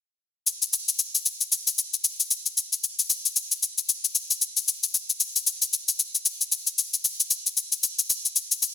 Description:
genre	amapiano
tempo	114 BPM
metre	4/4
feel	swing 58% on 16ths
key	none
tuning	none
part	shaker	drums	0.5-8.7 s	none	-21 LUFS	left 4 dB	none
room	light reverb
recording	dense, heavily limited modern master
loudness	-21 LUFS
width	side -10 dB against mid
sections	0.5-8.7 A section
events	none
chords	none

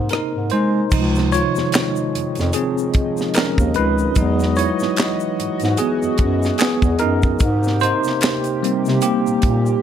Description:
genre	R&B, neo-soul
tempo	74 BPM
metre	4/4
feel	swing 57% on 16ths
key	unclear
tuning	A4 = 441 Hz
part	bell-like tine electric piano	accompaniment	0.0-9.8 s	C3 to Db5	-19 LUFS	right 1 dB	medium stereo tremolo
part	mellow bass clarinet	bass	0.0-9.8 s	Db2 to Ab3	-20 LUFS	equal	none
part	tight funk drum kit	drums	0.1-9.6 s	crash cymbal, handclaps, hi-hat, kick drum, rim click, snare drum	-20 LUFS	equal	none
part	chorused pulse-width pad	sustained chords	0.9-9.8 s	C3 to Eb5	-26 LUFS	equal	none
part	tube shaker and finger snaps	percussion	0.9-9.8 s	none	-33 LUFS	left 8 dB	none
room	light reverb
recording	none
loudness	-16 LUFS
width	side -9 dB against mid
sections	0.9-9.8 A section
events	tine electric piano solo 0.9-9.8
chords	0.0 Abmaj9; 0.9 Dbmaj9; 4.2 Emaj9; 7.4 Abmaj9

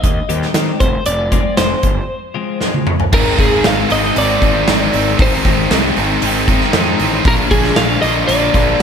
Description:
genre	quiet-loud alternative rock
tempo	116 BPM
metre	4/4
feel	straight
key	unclear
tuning	A4 = 440 Hz
part	twelve-string electric guitar	melody	0.0-8.8 s	Ab4 to F5	-18 LUFS	equal	harmonic tremolo, slapback echo
part	fuzz picked electric bass	bass	0.0-8.8 s	F1 to Eb3	-20 LUFS	equal	overdrive
part	big rock drum kit	drums	0.0-8.7 s	crash cymbal, hi-hat, kick drum, snare drum, toms	-16 LUFS	equal	none
part	twelve-string electric guitar	arpeggios	0.3-2.9 s	Eb3 to G4	-23 LUFS	left 5 dB	none
part	high-gain distorted guitar	riff	3.1-8.8 s	Ab2 to F4	-18 LUFS	right 10 dB	distortion
part	thick fuzz guitar	riff	3.1-8.8 s	Ab2 to Eb4	-18 LUFS	left 10 dB	distortion, slapback echo
room	moderate recital hall reverb, RT60 1.5 s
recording	big arena sound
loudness	-12 LUFS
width	side -7 dB against mid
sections	0.0-3.1 A section; 3.1-8.8 B section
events	break 2.1-3.1; drum fill 2.6-3.1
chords	0.0 Cm/Eb; 0.8 Fm; 3.1 Ab; 7.3 Bb

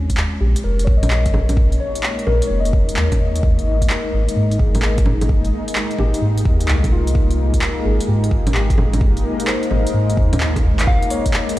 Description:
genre	future garage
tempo	129 BPM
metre	4/4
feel	swing 66% on 16ths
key	F minor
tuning	A4 = 445 Hz
part	tine electric piano	accompaniment	0.0-11.6 s	Ab3 to Eb5	-26 LUFS	left 4 dB	phaser, sidechain pumping, tape echo
part	granular cloud pad	sustained chords	0.5-11.6 s	Ab3 to Db5	-25 LUFS	left 1 dB	built-in reverb, sidechain pumping
part	warm sub bass	bass	0.0-11.6 s	F1 to Ab2	-18 LUFS	equal	sidechain pumping
part	deep house drum kit	drums	0.1-11.6 s	bongos, handclaps, hi-hat	-24 LUFS	right 1 dB	none
part	electronic kick drum	drums	0.1-11.3 s	none	-18 LUFS	equal	none
part	soft struck synth lead	melody	10.9-11.1 s	F5	-24 LUFS	left 2 dB	chorus, tape echo
room	digital ambience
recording	played on a big sound system in a bare room, large studio reverb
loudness	-15 LUFS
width	side -16 dB against mid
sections	0.0-10.9 A section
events	drum fill 10.4-10.9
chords	0.0 Bbm7; 3.4 Fm11/Ab; 10.9 Bbm7

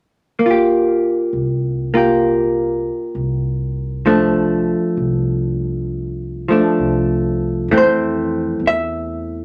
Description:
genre	jazz ballad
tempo	66 BPM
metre	4/4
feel	swing 67% on 8ths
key	F major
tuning	A4 = 440 Hz
part	hollow-body jazz guitar	accompaniment	0.4-9.4 s	E3 to E5	-18 LUFS	equal	none
part	upright bass	bass	1.3-9.4 s	C2 to F2	-26 LUFS	equal	none
room	wet club reverb, RT60 0.5 s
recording	none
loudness	-18 LUFS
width	mono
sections	0.4-7.7 A section; 7.7-9.4 B section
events	none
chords	0.4 C7sus4; 4.1 F6/C; 7.7 Fmaj7

